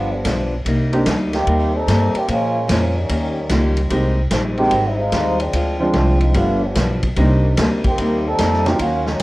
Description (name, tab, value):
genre	jazz, big band swing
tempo	148 BPM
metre	4/4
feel	swing 66% on 8ths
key	unclear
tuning	A4 = 436 Hz
part	muted trombone section	second line	0.0-9.2 s	Eb3 to A4	-20 LUFS	equal	none
part	picked old ladder-braced acoustic guitar	accompaniment	0.0-9.2 s	G2 to G4	-23 LUFS	left 1 dB	none
part	upright bass	bass	0.0-9.2 s	G1 to Bb2	-20 LUFS	equal	none
part	swinging big-band drum kit	drums	0.2-9.2 s	hi-hat, kick drum, ride cymbal, snare drum	-24 LUFS	equal	none
part	warm upright piano	accompaniment	0.9-1.1, 3.5-8.8 s	F3 to G4	-20 LUFS	right 1 dB	none
room	moderate club reverb, RT60 0.6 s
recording	worn, warbling old tape, cassette tape, warbly pitch drift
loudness	-15 LUFS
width	side -19 dB against mid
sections	0.0-9.2 A section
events	trombone section solo 0.0-9.2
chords	0.0 G7; 0.7 Cm7; 2.3 Bbm7; 3.1 Eb7; 3.9 Abmaj7; 5.5 Dm7b5; 6.4 G7; 7.2 Cm7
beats	0.26 | 0.66 1.07 1.48 1.88 | 2.29 2.69 3.10 3.51 | 3.91 4.32 4.73 5.13 | 5.54 5.95 6.35 6.76 | 7.17 7.57 7.98 8.39 | 8.79 9.20